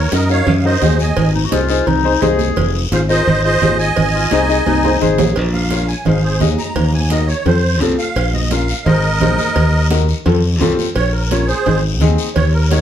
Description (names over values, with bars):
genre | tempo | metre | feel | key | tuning
latin, cumbia | 172 BPM | 4/4 | straight | unclear | A4 = 440 Hz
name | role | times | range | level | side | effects
musette accordion | melody | 0.0-12.8 s | Ab4 to Bb5 | -19 LUFS | right 2 dB | none
modern bright fingered electric bass | bass | 0.0-12.8 s | F1 to Gb2 | -16 LUFS | equal | none
warm upright piano | accompaniment | 0.1-12.8 s | C4 to Eb5 | -20 LUFS | left 4 dB | none
congas | percussion | 0.1-12.8 s | none | -21 LUFS | right 4 dB | none
cowbell and timbales | percussion | 0.1-12.8 s | none | -25 LUFS | right 4 dB | none
guiro | percussion | 0.1-12.8 s | none | -28 LUFS | left 6 dB | none
breathy clarinet | second line | 1.3-5.4 s | Eb4 to Ab4 | -19 LUFS | left 6 dB | none
room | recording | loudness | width
moderate stone room reverb, RT60 0.9 s | band playing live in one room | -12 LUFS | side -10 dB against mid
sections
0.0-5.4 A section; 5.4-12.8 B section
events
drum fill 4.7-5.4; accordion solo 5.4-12.8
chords
0.0 Ebm; 1.2 Ab; 2.6 Fm; 4.0 Ab; 5.4 Bbm; 6.1 Ab; 6.8 Ebm; 7.5 F; 8.2 Bbm; 8.9 Ab; 9.6 Ebm; 10.3 F; 11.0 Bbm; 11.7 Ab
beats
0.12 0.47 0.82 | 1.17 1.52 1.87 2.22 | 2.57 2.92 3.27 3.62 | 3.97 4.32 4.67 5.02 | 5.37 5.72 6.07 6.42 | 6.77 7.12 7.47 7.82 | 8.17 8.52 8.87 9.21 | 9.56 9.91 10.26 10.61 | 10.96 11.31 11.66 12.01 | 12.36 12.71